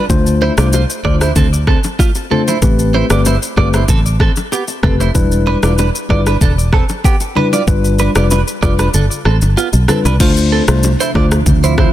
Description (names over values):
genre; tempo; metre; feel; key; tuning
afrobeats; 95 BPM; 4/4; straight; D dorian; A4 = 440 Hz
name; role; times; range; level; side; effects
direct-recorded clean electric guitar; riff; 0.0-11.9 s; A3 to D5; -19 LUFS; right 5 dB; lush chorus, ping-pong delay
mellow tine electric piano; accompaniment; 0.1-11.4 s; G3 to C5; -17 LUFS; left 4 dB; none
fingered electric bass; bass; 0.1-11.9 s; E1 to D2; -14 LUFS; equal; none
afro-pop drum kit; drums; 0.1-11.9 s; crash cymbal, kick drum, rim click, shaker; -16 LUFS; equal; none
congas and bongos; percussion; 0.1-11.9 s; none; -23 LUFS; left 3 dB; none
deep dark ambient pad; sustained chords; 10.9-11.9 s; C3 to F4; -21 LUFS; right 4 dB; chorus, built-in reverb
room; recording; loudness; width
digital ambience; dense, heavily limited modern master; -10 LUFS; side -13 dB against mid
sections
0.0-10.2 A section; 10.2-11.9 B section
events
kick muted 8.9-10.2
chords
0.1 Dm7; 2.6 Am9; 5.2 Em7; 7.7 G7; 10.2 Dm7